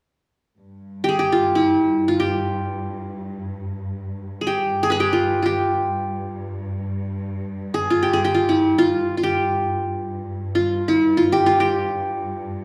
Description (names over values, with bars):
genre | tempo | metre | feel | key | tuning
Turkish makam ensemble | free time | none | none | G makam hicaz | A4 = 440 Hz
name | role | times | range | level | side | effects
rich studio cello section | drone | 0.6-12.6 s | G2 | -32 LUFS | equal | none
qanun | melody | 1.0-12.6 s | E4-40c to B4 | -21 LUFS | equal | none
room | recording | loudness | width
wet recital hall reverb, RT60 1.5 s | recorded in a church or concert hall | -21 LUFS | mono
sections
0.6-12.6 A section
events
none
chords
none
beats
free time